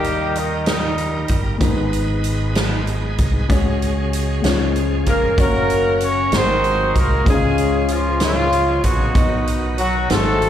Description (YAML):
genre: slow gospel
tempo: 64 BPM (dotted quarters)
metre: 6/8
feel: straight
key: unclear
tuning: A4 = 440 Hz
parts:
  - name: warm horn section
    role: melody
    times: 0.0-1.6, 5.1-10.5 s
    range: D#3 to C#5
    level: -19 LUFS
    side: equal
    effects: slapback echo, tape echo
  - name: dark upright piano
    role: accompaniment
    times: 0.0-10.5 s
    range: G#2 to E#5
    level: -23 LUFS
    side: left 4 dB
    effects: slapback echo
  - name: bright tonewheel organ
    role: sustained chords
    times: 0.0-10.5 s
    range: C#3 to C#5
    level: -28 LUFS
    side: right 4 dB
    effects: slow rotary speaker, overdrive
  - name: fingered electric bass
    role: bass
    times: 0.0-10.5 s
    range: E#1 to D#2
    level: -22 LUFS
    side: right 1 dB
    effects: none
  - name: swinging big-band drum kit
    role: drums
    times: 0.0-10.5 s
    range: hi-hat, kick drum, snare drum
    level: -22 LUFS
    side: right 1 dB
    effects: none
room: small room ambience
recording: live gig heard through the venue's PA, club reverb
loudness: -16 LUFS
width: side -10 dB against mid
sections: 0.0-10.5 A section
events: none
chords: 0.0 D#; 1.6 G#m; 3.5 C#sus4; 4.4 C#; 5.4 F#; 6.3 G#9; 7.3 C#; 9.2 B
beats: 0.66 | 1.61 2.55 | 3.49 4.43 | 5.38 6.32 | 7.26 8.21 | 9.15 10.10